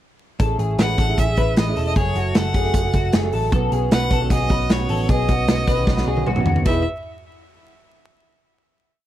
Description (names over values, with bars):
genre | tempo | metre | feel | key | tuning
jangly indie pop | 153 BPM | 4/4 | straight | E major | A4 = 440 Hz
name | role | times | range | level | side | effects
fingerpicked steel-string acoustic guitar | accompaniment | 0.4-6.8 s | F#2 to A4 | -26 LUFS | right 6 dB | none
electric guitar through a small old amp | arpeggios | 0.4-6.8 s | E4 to B4 | -26 LUFS | left 5 dB | analog chorus
vintage muted picked electric bass | bass | 0.4-6.8 s | E1 to D#2 | -23 LUFS | equal | none
modern studio drum kit | drums | 0.4-6.7 s | crash cymbal, hi-hat, kick drum, snare drum, toms | -20 LUFS | equal | none
bright violin | melody | 0.8-6.8 s | C#5 to F#5 | -26 LUFS | right 1 dB | none
room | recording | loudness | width
little or no reverb | vinyl crackle | -17 LUFS | side -12 dB against mid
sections
0.4-6.7 pre-chorus; 6.7-8.2 final chord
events
drum fill 5.9-6.7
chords
0.4 Amaj7; 2.0 F#m; 3.5 Badd9; 6.7 E5